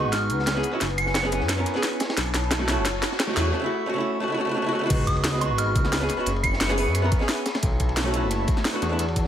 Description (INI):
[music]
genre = liquid drum and bass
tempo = 176 BPM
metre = 4/4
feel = swing 54% on 16ths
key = unclear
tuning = A4 = 440 Hz
[part]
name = soft synth bell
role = melody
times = 0.0-1.5, 5.1-6.9 s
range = Db6 to Db7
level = -30 LUFS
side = right 2 dB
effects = chorus, dub echo
[part]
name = archtop guitar, miked and amplified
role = accompaniment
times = 0.0-9.0 s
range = Ab3 to Bb4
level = -26 LUFS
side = equal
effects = low-pass filter, ping-pong delay
[part]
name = airy breathy pad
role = sustained chords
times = 0.0-9.3 s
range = Eb4 to Cb6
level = -32 LUFS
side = equal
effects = chorus, sidechain pumping
[part]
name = smooth synth bass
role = bass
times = 0.0-9.3 s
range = Gb1 to Gb2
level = -27 LUFS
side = equal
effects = none
[part]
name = riser and sub drop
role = sound effects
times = 1.0-6.3 s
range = none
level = -36 LUFS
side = equal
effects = none
[part]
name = crunchy breakbeat drum kit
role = drums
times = 0.1-9.3 s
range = ride cymbal, snare drum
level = -33 LUFS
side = equal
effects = high-pass filter on cymbals, high-pass filter on snare, high-pass filter on room
[part]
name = drum and bass drum kit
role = drums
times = 0.1-9.2 s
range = crash cymbal, hi-hat, snare drum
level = -28 LUFS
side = equal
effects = overdrive, high-pass filter on hats, high-pass filter on toms, high-pass filter on snare, high-pass filter on cymbals, high-pass filter on room
[part]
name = electronic kick drum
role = drums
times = 0.1-9.2 s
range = none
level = -25 LUFS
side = equal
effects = overdrive, high-pass filter on kick, high-pass filter on room
[sound]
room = light reverb, digital ambience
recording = none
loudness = -21 LUFS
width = side -10 dB against mid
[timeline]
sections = 0.0-4.9 A section; 4.9-9.3 B section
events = build-up 0.0-4.9; drum fill 0.0-3.5; drop 4.9-9.3; impact 4.9-6.3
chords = 0.0 Db9sus4; 0.6 Gb9sus4; 2.0 Cb9sus4; 3.4 Esus4; 4.9 Db9sus4; 6.1 Gb9sus4; 7.5 Cb9sus4